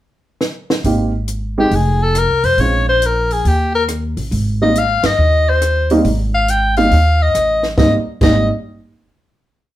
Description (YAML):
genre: jazz, small-group swing and bop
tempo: 138 BPM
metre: 4/4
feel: swing 66% on 8ths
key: Ab major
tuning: A4 = 440 Hz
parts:
  - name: compact cocktail drum kit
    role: drums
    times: 0.4-8.3 s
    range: crash cymbal, hi-hat, kick drum, ride cymbal, rim click, snare drum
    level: -20 LUFS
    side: equal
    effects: none
  - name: upright bass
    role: bass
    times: 0.8-8.5 s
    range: F1 to F2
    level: -17 LUFS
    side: equal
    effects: none
  - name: warm baby grand piano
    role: accompaniment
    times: 0.9-8.5 s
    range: G3 to G4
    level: -16 LUFS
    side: right 2 dB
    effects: none
  - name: clear soprano saxophone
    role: melody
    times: 1.6-8.5 s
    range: G4 to G5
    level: -15 LUFS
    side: left 2 dB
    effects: none
room: wet studio reverb, RT60 0.6 s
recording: heard from further back in the room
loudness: -13 LUFS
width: side -14 dB against mid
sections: 0.0-0.8 pickup bar; 0.8-7.8 A section; 7.8-9.5 final chord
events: drum fill 0.4-0.8; band accent 5.0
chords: 0.0 N.C.; 0.8 Abmaj7; 1.7 F5; 2.6 Bbm7; 3.5 Eb; 4.3 Abmaj7(no3); 7.8 Abmaj7